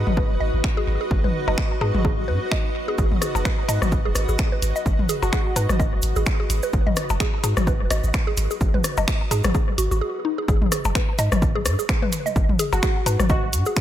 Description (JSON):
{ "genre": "minimal techno", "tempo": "128 BPM", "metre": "4/4", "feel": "swing 57% on 16ths", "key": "G# minor", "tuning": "A4 = 441 Hz", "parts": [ { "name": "punchy sub bass", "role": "bass", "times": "0.0-13.6 s", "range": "D#1 to G#2", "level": "-23 LUFS", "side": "equal", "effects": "sidechain pumping" }, { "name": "granular cloud pad", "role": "texture", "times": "0.0-10.0 s", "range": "F#4 to D#5", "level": "-31 LUFS", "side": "equal", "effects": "built-in reverb, sidechain pumping" }, { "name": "minimal click drum kit", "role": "percussion", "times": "0.1-13.3 s", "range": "percussion blips, rim click, toms", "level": "-27 LUFS", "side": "left 4 dB", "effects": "analog delay" }, { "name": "mallet-like synth pluck", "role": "riff", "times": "0.2-13.7 s", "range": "D#4 to D#5", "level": "-28 LUFS", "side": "equal", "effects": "chorus, sidechain pumping, analog delay" }, { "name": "electronic kick drum", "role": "drums", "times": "0.2-13.8 s", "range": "none", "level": "-23 LUFS", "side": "equal", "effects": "none" }, { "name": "punchy analog drum machine", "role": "drums", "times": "0.6-13.8 s", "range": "finger snaps, hi-hat", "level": "-29 LUFS", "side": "equal", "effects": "analog delay" }, { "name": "cabasa", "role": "percussion", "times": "3.0-13.8 s", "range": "none", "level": "-33 LUFS", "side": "right 4 dB", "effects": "none" }, { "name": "plucky unison lead", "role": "melody", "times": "5.2-5.8, 12.7-13.8 s", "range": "F#4", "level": "-29 LUFS", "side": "equal", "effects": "phaser, analog delay" } ], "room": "digital ambience", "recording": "echo-heavy mix", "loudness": "-19 LUFS", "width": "side -11 dB against mid", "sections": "0.0-10.5 A section; 10.5-13.8 B section", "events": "break 10.0-10.5; drop 10.5-13.8", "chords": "0.0 G#m; 10.5 N.C." }